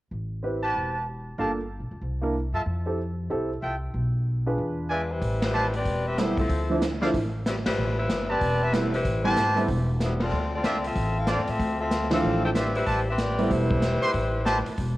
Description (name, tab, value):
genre	jazz, big band swing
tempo	188 BPM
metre	4/4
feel	swing 63% on 8ths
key	A minor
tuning	A4 = 437 Hz
part	upright bass	bass	0.1-15.0 s	E1 to A2	-29 LUFS	equal	none
part	warm concert grand piano	accompaniment	0.4-9.7, 12.1-13.8 s	E3 to B4	-28 LUFS	right 1 dB	none
part	clear trumpet section	stabs	0.6-14.6 s	C4 to C6	-29 LUFS	right 1 dB	none
part	warm saxophone section	melody	4.9-14.8 s	F3 to G5	-28 LUFS	left 2 dB	none
part	swinging big-band drum kit	drums	5.2-14.9 s	hi-hat, kick drum, ride cymbal, snare drum	-30 LUFS	equal	cassette tape
room	light reverb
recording	home recording on cassette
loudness	-23 LUFS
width	side -17 dB against mid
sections	0.1-5.2 A section; 5.2-15.0 B section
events	band accent 5.4, 7.6, 10.2, 12.1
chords	0.1 Am9; 1.4 Gm9; 2.0 C13; 2.7 Fmaj9; 3.9 Bdim; 4.6 E7b9; 5.2 Am9; 6.5 Dm9; 7.8 Am9; 10.3 Dm9; 12.9 Am9